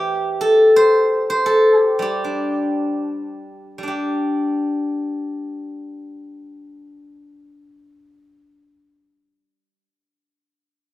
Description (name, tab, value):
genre	chinese traditional, Chinese solo plucked strings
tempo	53-87 BPM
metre	2/4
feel	rubato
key	G zhi mode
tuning	A4 = 437 Hz
part	steel-string zither	solo	0.0-9.8 s	E3 to G5	-17 LUFS	left 1 dB	none
room	little or no reverb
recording	recorded outdoors, with no room sound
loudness	-16 LUFS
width	side -16 dB against mid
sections	0.0-3.9 A section; 3.9-8.3 B section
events	slowing down 0.5-3.9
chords	none